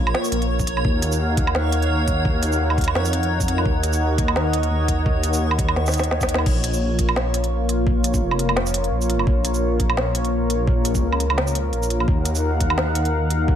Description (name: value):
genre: half-time drum and bass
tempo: 171 BPM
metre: 4/4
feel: swing 56% on 16ths, half-time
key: Bb minor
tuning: A4 = 440 Hz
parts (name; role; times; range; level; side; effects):
- dark analog pad; sustained chords; 0.0-13.6 s; Bb3 to Gb5; -24 LUFS; left 1 dB; chorus, sidechain pumping
- dark detuned saw bass; bass; 0.0-13.6 s; F1 to F2; -22 LUFS; equal; none
- backwards swelling texture; texture; 0.0-6.5 s; Db5; -30 LUFS; right 1 dB; built-in reverb, lush chorus
- organic electronic drum kit; drums; 0.1-13.4 s; crash cymbal, hi-hat, shaker, snare drum, woodblock; -25 LUFS; right 2 dB; none
- electronic kick drum; drums; 0.6-13.6 s; none; -22 LUFS; equal; overdrive
room: light reverb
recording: none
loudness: -18 LUFS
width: side -9 dB against mid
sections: 0.0-6.5 A section; 6.5-13.6 A section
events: drop 0.0-6.5, 6.5-13.6; drum fill 5.8-6.5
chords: 0.0 Bbm; 0.8 Ebm; 6.5 Bbm; 12.1 Ebm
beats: 0.15 0.50 | 0.85 1.20 1.55 1.90 | 2.25 2.60 2.95 3.31 | 3.66 4.01 4.36 4.71 | 5.06 5.41 5.76 6.11 | 6.46 6.81 7.17 7.52 | 7.87 8.22 8.57 8.92 | 9.27 9.62 9.97 10.32 | 10.67 11.02 11.38 11.73 | 12.08 12.43 12.78 13.13 | 13.48